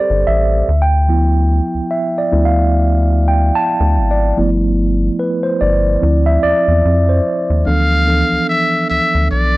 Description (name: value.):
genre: R&B, neo-soul.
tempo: 73 BPM.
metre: 4/4.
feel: swing 58% on 16ths.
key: D dorian.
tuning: A4 = 442 Hz.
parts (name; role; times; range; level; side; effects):
mellow tine electric piano; accompaniment; 0.0-9.6 s; E3 to A5; -15 LUFS; right 1 dB; medium stereo tremolo.
rubbery square bass; bass; 0.1-9.6 s; G1 to F2; -14 LUFS; equal; none.
trumpet with metal mute; melody; 7.7-9.6 s; D5 to F5; -15 LUFS; left 1 dB; none.
room: light reverb.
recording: dry, close 1970s-style studio recording.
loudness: -12 LUFS.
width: side -19 dB against mid.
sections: 0.0-7.7 A section; 7.7-9.6 B section.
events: tine electric piano solo 0.0-7.7.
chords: 0.0 Am7; 0.7 Dm69; 4.4 G13; 6.0 Dm9; 7.7 Dm69.